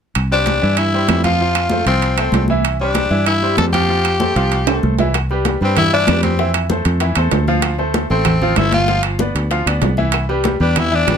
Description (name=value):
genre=latin, salsa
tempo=192 BPM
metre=4/4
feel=straight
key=C major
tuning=A4 = 440 Hz
part: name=fingered electric bass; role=bass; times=0.2-11.2 s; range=G1 to G2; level=-18 LUFS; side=equal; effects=none
part: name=claves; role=percussion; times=0.2-11.2 s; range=none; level=-26 LUFS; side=right 8 dB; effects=none
part: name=congas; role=percussion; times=0.2-11.2 s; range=none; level=-23 LUFS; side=equal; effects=none
part: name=timbales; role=percussion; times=0.2-11.2 s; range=none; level=-22 LUFS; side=right 8 dB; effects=none
part: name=raspy tenor saxophone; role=melody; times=0.3-11.2 s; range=C4 to A4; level=-18 LUFS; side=left 3 dB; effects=none
part: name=bright baby grand piano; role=accompaniment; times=0.3-11.2 s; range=E3 to F5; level=-21 LUFS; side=right 1 dB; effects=none
part: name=bongos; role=percussion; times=5.2-11.2 s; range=none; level=-27 LUFS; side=left 7 dB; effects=none
room=light reverb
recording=close, detailed microphones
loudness=-14 LUFS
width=side -7 dB against mid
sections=0.2-5.1 A section; 5.1-11.2 B section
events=drum fill 4.7-5.1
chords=0.2 C; 1.4 F; 2.6 C; 3.9 Fadd9; 5.1 Cmaj7; 6.4 Fmaj7; 7.6 Dm7; 8.9 G7; 10.1 Cmaj7